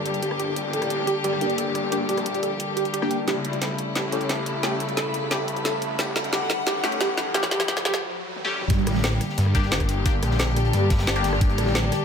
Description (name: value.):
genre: dark technical drum and bass.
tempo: 177 BPM.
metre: 4/4.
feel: straight.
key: G minor.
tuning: A4 = 440 Hz.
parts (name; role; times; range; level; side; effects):
rich chamber string section; sustained chords; 0.0-12.0 s; C#3 to F#5; -28 LUFS; left 2 dB; sidechain pumping.
snarling distorted saw bass; bass; 0.0-11.9 s; G1 to G2; -28 LUFS; equal; distortion, tube saturation, sidechain pumping, high-pass filter.
ethereal airy pad; texture; 0.0-12.0 s; G4 to B5; -31 LUFS; left 1 dB; ensemble chorus, built-in reverb, tremolo, sidechain pumping.
drum and bass drum kit; drums; 0.1-12.0 s; hi-hat, rim click, snare drum, toms; -27 LUFS; equal; overdrive.
analog pluck; arpeggios; 0.2-8.0 s; G4 to G5; -30 LUFS; right 3 dB; chorus, sidechain pumping, ping-pong delay.
band-passed chord stab; stabs; 1.4-4.7, 6.8-11.3 s; A3 to G4; -30 LUFS; left 2 dB; phaser, ping-pong delay.
riser; sound effects; 5.1-8.7 s; none; -33 LUFS; right 4 dB; none.
crunchy breakbeat drum kit; drums; 8.7-12.0 s; hi-hat, snare drum; -38 LUFS; equal; none.
electronic kick drum; drums; 8.7-11.5 s; none; -22 LUFS; equal; none.
room: wet plate reverb, RT60 1.0 s, small room ambience.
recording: dreamy mix soaked in reverb, high-pass filter.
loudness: -21 LUFS.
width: side -7 dB against mid.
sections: 0.0-8.7 A section; 8.7-12.0 B section.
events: build-up 0.0-8.7; filter sweep on synth arpeggio sound 0.0-8.7; filter sweep on synth stab 0.0-8.7; filter sweep 0.0-8.7; drum fill 3.3-8.0, 8.4-8.7; riser 5.1-8.7; break 8.0-8.7; drop 8.7-12.0.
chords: 0.0 Gm; 3.3 A7; 8.7 Gm.